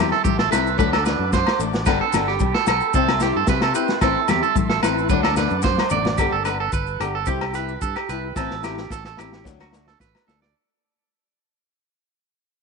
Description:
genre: highlife guitar band.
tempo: 111 BPM.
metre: 4/4.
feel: straight.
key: G major.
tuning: A4 = 440 Hz.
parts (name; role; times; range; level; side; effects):
flamenco guitar; accompaniment; 0.0-10.5 s; E3 to A4; -26 LUFS; left 11 dB; none.
mellow tonewheel organ; sustained chords; 0.0-6.2 s; E5 to D6; -31 LUFS; equal; slow rotary speaker.
electric guitar at the edge of break-up; arpeggios; 0.0-10.5 s; F#4 to D5; -22 LUFS; right 13 dB; tape echo.
fingered electric bass; bass; 0.0-10.5 s; G1 to C3; -27 LUFS; equal; none.
vintage drum kit; drums; 0.1-10.5 s; hi-hat, kick drum, rim click, snare drum; -24 LUFS; equal; none.
maracas; percussion; 0.2-10.4 s; none; -36 LUFS; left 16 dB; none.
congas; percussion; 0.3-6.2 s; none; -28 LUFS; left 13 dB; none.
agogo bells; percussion; 0.5-10.3 s; none; -29 LUFS; left 17 dB; none.
room: light reverb, small room ambience.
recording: 1960s-style stereo with parts hard left and right, nothing above 10.6 kHz.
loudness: -18 LUFS.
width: side -4 dB against mid.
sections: 0.0-6.2 A section; 6.2-10.6 B section.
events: drum fill 5.6-6.2, 8.4-10.6; fade-out 6.2-10.6.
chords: 0.0 Am; 0.8 D; 1.9 Gadd9; 2.9 C; 4.0 Am; 5.1 D; 6.2 Gadd9; 7.3 C; 8.4 Am; 9.5 D.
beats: 0.25 0.79 1.32 | 1.86 2.40 2.94 3.48 | 4.02 4.56 5.10 5.64 | 6.19 6.73 7.27 7.82 | 8.36 8.91 9.46 10.00.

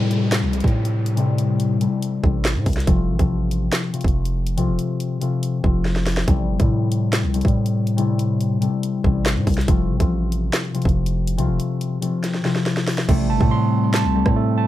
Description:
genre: hip hop, drill.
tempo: 141 BPM.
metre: 4/4.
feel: half-time.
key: A minor.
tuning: A4 = 440 Hz.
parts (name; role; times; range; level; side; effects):
concert harp; accompaniment; 0.0-14.7 s; C3 to A4; -22 LUFS; left 4 dB; low-pass filter.
long sustained 808-style bass; bass; 0.0-14.7 s; F1 to A2; -22 LUFS; right 1 dB; none.
downlifter; sound effects; 0.0-2.9 s; none; -34 LUFS; right 2 dB; none.
drill drum kit; drums; 0.1-14.4 s; crash cymbal, handclaps, hi-hat, kick drum, rim click, snare drum; -21 LUFS; right 1 dB; none.
dark analog pad; sustained chords; 13.1-14.7 s; G3 to A4; -29 LUFS; left 2 dB; chorus.
overdriven tine electric piano; arpeggios; 13.1-14.7 s; A3 to C6; -22 LUFS; right 9 dB; low-pass filter, digital delay.
room: light reverb.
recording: dark, warm production.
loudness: -18 LUFS.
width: side -14 dB against mid.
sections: 0.0-14.7 A section.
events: filter sweep 0.0-13.1; drum fill 5.9-6.3, 12.2-13.1; hi-hats muted 13.1-14.7.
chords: 0.0 Am7; 2.9 F; 6.3 Am7; 9.7 F; 13.1 Am7.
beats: 0.32 0.75 | 1.17 1.60 2.02 2.45 | 2.87 3.30 3.73 4.15 | 4.58 5.00 5.43 5.85 | 6.28 6.70 7.13 7.55 | 7.98 8.41 8.83 9.26 | 9.68 10.11 10.53 10.96 | 11.38 11.81 12.24 12.66 | 13.09 13.51 13.94 14.36.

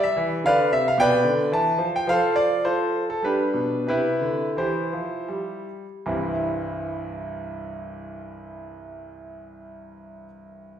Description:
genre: classical, baroque-style suite movement for grand piano.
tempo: 76-113 BPM.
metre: 3/4.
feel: rubato.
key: C major.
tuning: A4 = 440 Hz.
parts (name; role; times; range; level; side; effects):
bright concert grand piano; solo; 0.0-10.8 s; C2 to A5; -22 LUFS; equal; none.
room: wet recital hall reverb, RT60 1.2 s.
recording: recorded in a church or concert hall.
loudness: -21 LUFS.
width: side -9 dB against mid.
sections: 0.0-6.1 A section; 6.1-10.5 B section.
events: slowing down 1.2-6.1.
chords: 0.4 G; 1.5 Emadd11; 2.1 F; 3.2 G; 3.9 C.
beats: | 0.44 0.98 1.52 | 2.07 2.65 3.24 | 3.89 4.58 5.30 | 6.07 6.82 7.58 | 8.32 9.05 9.79.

